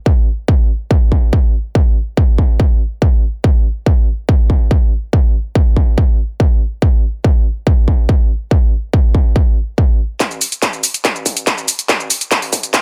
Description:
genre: techno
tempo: 142 BPM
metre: 4/4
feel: straight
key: none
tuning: none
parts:
  - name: electronic kick drum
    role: drums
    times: 0.1-12.8 s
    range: none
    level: -14 LUFS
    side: equal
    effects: distortion, overdrive, high-pass filter on kick
  - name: techno drum kit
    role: drums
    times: 10.2-12.8 s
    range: handclaps, hi-hat, shaker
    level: -18 LUFS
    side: equal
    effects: overdrive
room: little or no reverb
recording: none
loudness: -14 LUFS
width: mono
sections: 0.0-10.2 A section; 10.2-12.8 B section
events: build-up 10.2-12.8; drum fill 10.2-12.8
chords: none

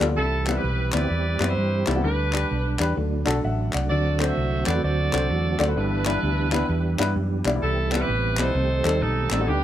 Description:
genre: uptempo gospel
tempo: 129 BPM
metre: 4/4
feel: swing 63% on 8ths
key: G major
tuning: A4 = 440 Hz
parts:
  - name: warm baby grand piano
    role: accompaniment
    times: 0.0-9.6 s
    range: G2 to A5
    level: -27 LUFS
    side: left 4 dB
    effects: none
  - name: percussive tonewheel organ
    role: sustained chords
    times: 0.0-9.6 s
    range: D3 to G4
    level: -29 LUFS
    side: right 5 dB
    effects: slow rotary speaker, chorus vibrato
  - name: hollow-body short-scale fingered electric bass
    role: bass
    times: 0.0-9.6 s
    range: G1 to G2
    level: -25 LUFS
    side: equal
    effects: none
  - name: group handclap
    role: percussion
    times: 0.0-9.4 s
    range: none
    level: -31 LUFS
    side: left 3 dB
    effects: none
  - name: bright saxophone section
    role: melody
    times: 0.2-9.6 s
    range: B3 to E5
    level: -27 LUFS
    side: right 2 dB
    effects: none
room: small room reverb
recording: none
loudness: -21 LUFS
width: side -11 dB against mid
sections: 0.0-9.6 A section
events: grand piano fill 3.0-3.9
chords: 0.2 Cmaj7; 2.0 G/D; 3.0 D; 3.9 D7; 5.8 G6; 7.6 Cmaj7; 8.6 Cm6

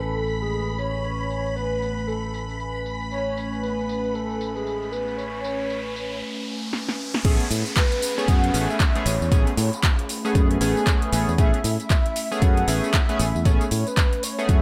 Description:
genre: deep house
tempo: 116 BPM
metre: 4/4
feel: swing 60% on 16ths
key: A major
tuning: A4 = 440 Hz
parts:
  - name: breathy flute-like synth lead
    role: melody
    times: 0.0-14.6 s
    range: G#4 to F#5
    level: -31 LUFS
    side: equal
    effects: ensemble chorus, digital delay
  - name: warbly tape-like pad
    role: sustained chords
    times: 0.0-14.6 s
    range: A3 to B5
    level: -35 LUFS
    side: equal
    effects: chorus, built-in reverb, sidechain pumping
  - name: fingered electric bass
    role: bass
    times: 0.0-14.6 s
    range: A1 to A2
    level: -30 LUFS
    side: equal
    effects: tube saturation, sidechain pumping, low-pass filter
  - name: deep house drum kit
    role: drums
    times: 0.0-14.6 s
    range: crash cymbal, handclaps, hi-hat, snare drum, tambourine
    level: -31 LUFS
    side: equal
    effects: overdrive, low-pass filter on hats, low-pass filter on perc, low-pass filter on snare, low-pass filter on cymbals
  - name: impact, riser and downlifter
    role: sound effects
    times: 4.2-11.4 s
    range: none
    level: -37 LUFS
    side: equal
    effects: none
  - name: string machine, violins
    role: texture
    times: 0.0-6.2 s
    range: B5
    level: -37 LUFS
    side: equal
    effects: ensemble chorus, sidechain pumping
  - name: chorused polysynth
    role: stabs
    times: 7.2-14.6 s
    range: A3 to G#4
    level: -28 LUFS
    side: equal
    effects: digital delay
  - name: electronic kick drum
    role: drums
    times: 7.2-14.6 s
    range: none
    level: -22 LUFS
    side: equal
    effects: none
room: light reverb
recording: none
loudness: -23 LUFS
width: mono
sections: 0.0-7.2 A section; 7.2-14.6 B section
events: impact 0.0-1.0; riser 4.2-7.2; drum fill 6.7-7.2; drop 7.2-14.6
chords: 0.0 Amaj9

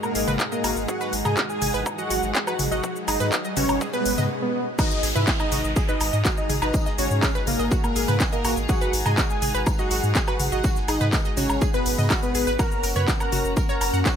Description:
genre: melodic techno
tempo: 123 BPM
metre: 4/4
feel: straight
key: G# minor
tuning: A4 = 440 Hz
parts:
  - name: wide unison lead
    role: melody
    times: 0.0-14.0 s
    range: A#3 to B4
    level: -28 LUFS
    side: right 1 dB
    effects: sidechain pumping, dub echo
  - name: big bright polysynth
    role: second line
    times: 0.0-14.0 s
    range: A#4 to B5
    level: -32 LUFS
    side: left 1 dB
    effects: ensemble chorus, sidechain pumping, dub echo
  - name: warm studio string section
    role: sustained chords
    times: 0.0-14.2 s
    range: G#3 to A#5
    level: -34 LUFS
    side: left 2 dB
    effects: sidechain pumping, low-pass filter
  - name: analog drone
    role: drone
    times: 0.0-4.3 s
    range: G#2 to G#3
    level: -39 LUFS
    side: left 1 dB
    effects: none
  - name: techno drum kit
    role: drums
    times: 0.0-14.2 s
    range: crash cymbal, handclaps, hi-hat, shaker, toms, woodblock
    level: -27 LUFS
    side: equal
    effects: overdrive, sidechain pumping on perc, sidechain pumping on hats, sidechain pumping on toms, sidechain pumping on cymbals
  - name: riser, swell and downlifter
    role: sound effects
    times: 0.1-8.7 s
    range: none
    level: -34 LUFS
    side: right 1 dB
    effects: none
  - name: ethereal airy pad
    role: texture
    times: 0.0-14.2 s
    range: G#3 to F#5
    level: -36 LUFS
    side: equal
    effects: ensemble chorus, built-in reverb, sidechain pumping
  - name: wide unison pluck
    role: arpeggios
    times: 0.2-14.1 s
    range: F#4 to F#5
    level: -31 LUFS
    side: right 1 dB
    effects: sidechain pumping, dub echo
  - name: round analog bass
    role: bass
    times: 0.2-14.0 s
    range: F#1 to G#2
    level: -26 LUFS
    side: equal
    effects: sidechain pumping
  - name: electronic kick drum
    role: drums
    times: 0.4-14.2 s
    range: none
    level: -24 LUFS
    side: equal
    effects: overdrive, high-pass filter on kick
  - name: modern studio drum kit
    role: drums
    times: 4.8-14.2 s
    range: hi-hat, snare drum, tambourine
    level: -40 LUFS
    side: equal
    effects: high-pass filter on hats, low-pass filter on hats, high-pass filter on snare, low-pass filter on snare, high-pass filter on perc, low-pass filter on perc, high-pass filter on room, low-pass filter on room
room: little or no reverb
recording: none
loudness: -20 LUFS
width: side -8 dB against mid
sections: 0.0-4.8 A section; 4.8-14.2 B section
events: build-up 0.0-4.8; riser 0.1-4.3; swell 3.8-4.8; break 4.3-4.8; drop 4.8-14.2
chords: 0.0 G#m7; 12.6 F#

